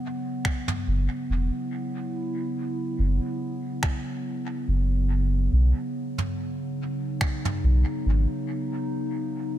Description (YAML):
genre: ambient dub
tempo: 71 BPM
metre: 4/4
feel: swing 55% on 16ths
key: unclear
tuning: A4 = 440 Hz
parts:
  - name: warbly tape-like pad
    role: sustained chords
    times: 0.0-9.6 s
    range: C#3 to E4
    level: -30 LUFS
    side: equal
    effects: chorus, built-in reverb
  - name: soft brush drum kit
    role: drums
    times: 0.4-7.6 s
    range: finger snaps, toms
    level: -31 LUFS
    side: right 1 dB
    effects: dub echo
  - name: electronic kick drum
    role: drums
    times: 0.5-7.4 s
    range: none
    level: -26 LUFS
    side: equal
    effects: none
  - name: soft dub sub bass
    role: bass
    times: 0.9-8.3 s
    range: E1 to B1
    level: -21 LUFS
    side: equal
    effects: none
room: light reverb, studio ambience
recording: none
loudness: -24 LUFS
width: side -12 dB against mid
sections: 0.0-9.6 A section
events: none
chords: 0.0 F#5; 5.5 B